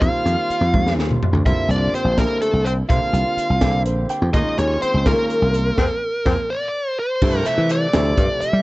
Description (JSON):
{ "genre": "electric jazz fusion", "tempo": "83 BPM (dotted quarters)", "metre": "6/8", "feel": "straight", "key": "unclear", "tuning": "A4 = 435 Hz", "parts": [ { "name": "bluesy overdriven lead guitar", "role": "melody", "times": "0.0-8.6 s", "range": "A4 to F5", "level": "-22 LUFS", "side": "right 1 dB", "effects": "distortion" }, { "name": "breathy tenor saxophone", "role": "second line", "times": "0.0-6.3 s", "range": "A3 to F4", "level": "-26 LUFS", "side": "left 2 dB", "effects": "none" }, { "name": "clear grand piano", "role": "accompaniment", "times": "0.0-8.6 s", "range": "C3 to G5", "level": "-26 LUFS", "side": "equal", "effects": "none" }, { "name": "dry thumbed slap bass", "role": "bass", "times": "0.0-8.6 s", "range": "Bb1 to G3", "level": "-20 LUFS", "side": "equal", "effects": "none" }, { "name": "crisp fusion drum kit", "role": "drums", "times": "0.0-8.5 s", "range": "crash cymbal, hi-hat, kick drum, snare drum, toms", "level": "-21 LUFS", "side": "equal", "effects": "none" } ], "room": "light reverb", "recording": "cassette tape, nothing above 8.0 kHz", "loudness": "-16 LUFS", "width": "side -20 dB against mid", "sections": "0.0-7.2 A section; 7.2-8.6 B section", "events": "drum fill 0.7-1.5, 6.5-7.2; grand piano fill 3.6-4.3; band accent 5.8-7.2", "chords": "0.0 F9sus4; 1.5 C9sus4; 4.3 Eb9sus4; 5.8 Fsus4; 6.5 N.C.; 7.2 G13sus4" }